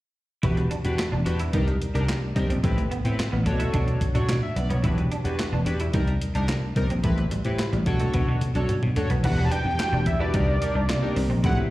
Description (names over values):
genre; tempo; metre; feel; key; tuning
early-eighties boogie funk; 109 BPM; 4/4; straight; E minor; A4 = 440 Hz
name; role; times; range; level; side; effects
chorused polysynth; accompaniment; 0.4-11.7 s; C4 to F#5; -30 LUFS; left 1 dB; slapback echo
electric guitar at the edge of break-up; riff; 0.4-11.6 s; G3 to E4; -33 LUFS; right 2 dB; ensemble chorus, slapback echo
vintage slap bass; bass; 0.4-11.7 s; E1 to C3; -24 LUFS; equal; none
crisp 8-bit digital drum machine; drums; 0.4-11.6 s; crash cymbal, handclaps, hi-hat, kick drum, snare drum, toms; -27 LUFS; equal; none
fat analog lead; melody; 9.2-11.6 s; D5 to A5; -28 LUFS; equal; slapback echo
soft string machine; sustained chords; 9.2-11.7 s; C3 to G4; -34 LUFS; equal; phaser, ensemble chorus
room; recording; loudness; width
light reverb; live gig heard through the venue's PA, recital hall reverb; -22 LUFS; side -17 dB against mid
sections
0.4-9.2 A section; 9.2-11.7 B section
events
drum fill 8.1-9.2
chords
0.4 Em9; 1.5 Cm9; 2.6 Am9; 3.5 Bm9; 4.8 Em9; 5.9 Cm9; 7.0 Am9; 7.9 Bm9; 9.2 Em9; 10.3 Cm9